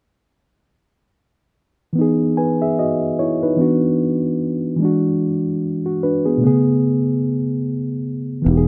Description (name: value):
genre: R&B, neo-soul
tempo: 74 BPM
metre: 4/4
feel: swing 57% on 16ths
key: E major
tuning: A4 = 439 Hz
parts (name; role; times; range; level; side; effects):
- reed electric piano; accompaniment; 1.9-8.7 s; B2 to G#5; -19 LUFS; equal; none
- fingered electric bass; bass; 8.5-8.7 s; E1; -17 LUFS; equal; none
room: moderate studio ambience, RT60 0.5 s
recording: dark, warm production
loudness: -19 LUFS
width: mono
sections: 2.0-8.7 A section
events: none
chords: 2.0 Emaj7; 3.6 Bmadd11/E; 4.8 E9; 6.4 Amaj9